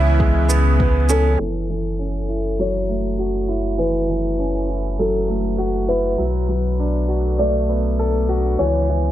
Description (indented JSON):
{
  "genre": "piano and strings electronica",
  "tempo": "100 BPM",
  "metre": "4/4",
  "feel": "straight",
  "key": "F# minor",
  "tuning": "A4 = 443 Hz",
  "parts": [
    { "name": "felt-muted upright piano", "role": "melody", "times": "0.0-9.1 s", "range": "A4 to E5", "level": "-24 LUFS", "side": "left 1 dB", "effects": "ping-pong delay" },
    { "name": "lush unison pad", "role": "sustained chords", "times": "0.0-9.1 s", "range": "C#3 to A4", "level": "-30 LUFS", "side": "equal", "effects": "chorus, phaser, sidechain pumping" },
    { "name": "warm upright piano", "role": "riff", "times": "0.0-9.1 s", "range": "E3 to B4", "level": "-22 LUFS", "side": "right 1 dB", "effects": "low-pass filter, ping-pong delay" },
    { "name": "warm sub bass", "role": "bass", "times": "0.0-9.1 s", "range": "F#1 to C#2", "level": "-20 LUFS", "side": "equal", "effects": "sidechain pumping" },
    { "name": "electronic kick drum", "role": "drums", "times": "0.2-0.9 s", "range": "none", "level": "-18 LUFS", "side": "equal", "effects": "studio reverb" },
    { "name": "shaker", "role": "drums", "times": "0.5-1.2 s", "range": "none", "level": "-27 LUFS", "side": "right 4 dB", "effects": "low-pass filter on perc, studio reverb" }
  ],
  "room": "light reverb",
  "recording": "low-pass filter",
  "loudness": "-17 LUFS",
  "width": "side -13 dB against mid",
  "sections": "0.0-1.4 A section; 1.4-9.1 B section",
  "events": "filter sweep on upright piano 1.4-9.1; filter sweep 1.4-9.1",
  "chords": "0.0 C#m7; 1.4 F#m7; 6.2 Bm7; 8.6 C#m7"
}